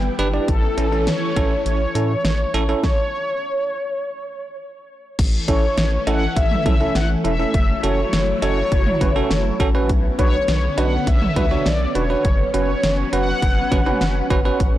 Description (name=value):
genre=synth-pop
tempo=102 BPM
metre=4/4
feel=straight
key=unclear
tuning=A4 = 443 Hz
part: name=mellow synth brass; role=melody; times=0.0-14.3 s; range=A4 to G5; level=-24 LUFS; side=left 1 dB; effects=chorus, tape echo
part: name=phased string machine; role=sustained chords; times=0.0-14.8 s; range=D3 to E4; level=-27 LUFS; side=left 1 dB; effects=ensemble chorus, phaser
part: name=rubbery square bass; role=bass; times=0.0-14.8 s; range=E1 to A2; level=-23 LUFS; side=equal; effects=transformer saturation
part: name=bell-like tine electric piano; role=accompaniment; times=0.2-14.6 s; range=C#4 to D5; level=-24 LUFS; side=right 4 dB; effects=none
part: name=pop drum kit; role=drums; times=0.2-14.7 s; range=cowbell, crash cymbal, hi-hat, kick drum, snare drum, toms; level=-21 LUFS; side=equal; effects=none
room=moderate plate reverb, RT60 2.7 s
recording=blown-out, overdriven recording, overdrive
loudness=-17 LUFS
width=side -14 dB against mid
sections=0.0-5.2 A section; 5.2-14.8 B section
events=stop 2.8-5.2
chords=0.5 A; 7.5 F#m7; 9.9 Bmadd9; 12.2 F#sus4